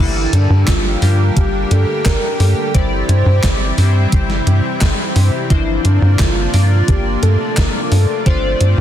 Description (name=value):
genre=synthwave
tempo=87 BPM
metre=4/4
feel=straight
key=G dorian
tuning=A4 = 438 Hz
part: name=warm velvety synth lead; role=melody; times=0.0-8.8 s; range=D4 to C5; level=-22 LUFS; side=equal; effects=chorus, tremolo, tape echo
part: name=lush unison pad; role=sustained chords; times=0.0-8.8 s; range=C3 to G4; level=-24 LUFS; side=right 1 dB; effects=chorus, sidechain pumping
part: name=chorused polysynth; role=stabs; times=0.0-8.8 s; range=F3 to D5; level=-22 LUFS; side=left 3 dB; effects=phaser
part: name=tight sequencer bass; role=bass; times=0.0-8.8 s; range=G1 to G2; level=-14 LUFS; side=equal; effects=sidechain pumping
part: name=gated 80s digital drum machine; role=drums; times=0.3-8.7 s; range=handclaps, hi-hat, snare drum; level=-22 LUFS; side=equal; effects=gated reverb, gated reverb snare
part: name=electronic kick drum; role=drums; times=0.7-8.4 s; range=none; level=-15 LUFS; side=equal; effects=none
room=light reverb, digital ambience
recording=dense, heavily limited modern master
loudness=-12 LUFS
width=side -11 dB against mid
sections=0.0-8.8 A section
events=none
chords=0.0 Gmadd9; 2.7 C/G; 5.5 Bbadd9/G; 8.3 F6/G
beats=0.68 1.36 2.05 | 2.74 3.43 4.12 4.81 | 5.50 6.19 6.88 7.57 | 8.26